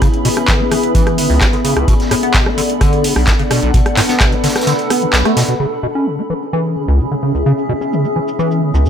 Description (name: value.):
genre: acid house.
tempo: 129 BPM.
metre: 4/4.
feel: straight.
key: C# phrygian.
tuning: A4 = 440 Hz.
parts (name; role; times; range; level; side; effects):
dark analog pad; sustained chords; 0.0-8.9 s; B3 to D5; -21 LUFS; left 2 dB; chorus, sidechain pumping.
liquid acid bass; riff; 0.0-8.9 s; B1 to C#4; -16 LUFS; equal; phaser, overdrive, sidechain pumping, dub echo.
booming analog drum machine; drums; 0.0-8.9 s; handclaps, hi-hat, rim click, shaker; -18 LUFS; equal; low-pass filter on hats, low-pass filter on snare, low-pass filter on perc.
electronic kick drum; drums; 0.0-4.3 s; none; -15 LUFS; equal; none.
vintage drum kit; drums; 0.0-5.5 s; hi-hat, snare drum; -27 LUFS; equal; high-pass filter on hats, high-pass filter on snare, high-pass filter on room.
granular cloud pad; texture; 0.0-8.9 s; C#4 to B5; -20 LUFS; equal; built-in reverb, sidechain pumping.
room: light reverb.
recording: none.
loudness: -12 LUFS.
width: side -8 dB against mid.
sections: 0.0-5.6 A section; 5.6-8.9 B section.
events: kick drops out 4.7-5.6; band accent 5.1.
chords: 0.0 C#m7; 1.9 Bm7; 5.6 C#m7.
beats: | 0.02 0.48 0.95 1.41 | 1.88 2.34 2.81 3.27 | 3.74 4.20 4.67 5.13 | 5.60 6.07 6.53 7.00 | 7.46 7.92 8.39 8.86.